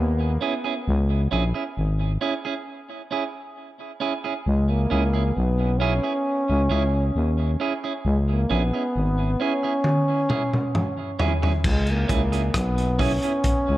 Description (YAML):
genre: dub reggae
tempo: 67 BPM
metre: 4/4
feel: straight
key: C# dorian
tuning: A4 = 441 Hz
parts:
  - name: breathy trombone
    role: melody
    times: 0.0-13.8 s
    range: G#3 to C#4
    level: -26 LUFS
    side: equal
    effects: tape echo
  - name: growling FM bass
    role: bass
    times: 0.0-13.8 s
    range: G#1 to D#2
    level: -21 LUFS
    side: equal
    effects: none
  - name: clean electric guitar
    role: accompaniment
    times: 0.4-13.3 s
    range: C#4 to G#4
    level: -28 LUFS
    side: right 5 dB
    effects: tape echo
  - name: crunchy breakbeat drum kit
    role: drums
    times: 9.8-13.7 s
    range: crash cymbal, hi-hat, kick drum, rim click, toms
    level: -24 LUFS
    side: equal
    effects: none
room: moderate spring reverb, RT60 2.4 s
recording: echo-heavy mix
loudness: -21 LUFS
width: side -15 dB against mid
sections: 0.0-11.6 A section; 11.6-13.8 B section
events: drum fill 9.8-11.6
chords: 0.0 C#m